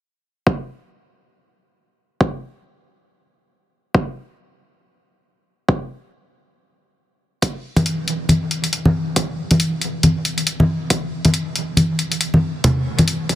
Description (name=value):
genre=deep dubstep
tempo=138 BPM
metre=4/4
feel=swing 58% on 16ths, half-time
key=none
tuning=none
part: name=electronic kick drum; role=drums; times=0.5-13.4 s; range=none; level=-18 LUFS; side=equal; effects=high-pass filter on kick, high-pass filter on room
part: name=electronic hi-hat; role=drums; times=7.4-13.4 s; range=none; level=-21 LUFS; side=left 1 dB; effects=none
part: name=congas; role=percussion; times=7.8-13.1 s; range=none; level=-17 LUFS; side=equal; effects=dub echo
room=moderate huge ambient reverb, RT60 4.9 s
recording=dense, heavily limited modern master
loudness=-17 LUFS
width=side -13 dB against mid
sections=0.5-13.4 A section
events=none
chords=none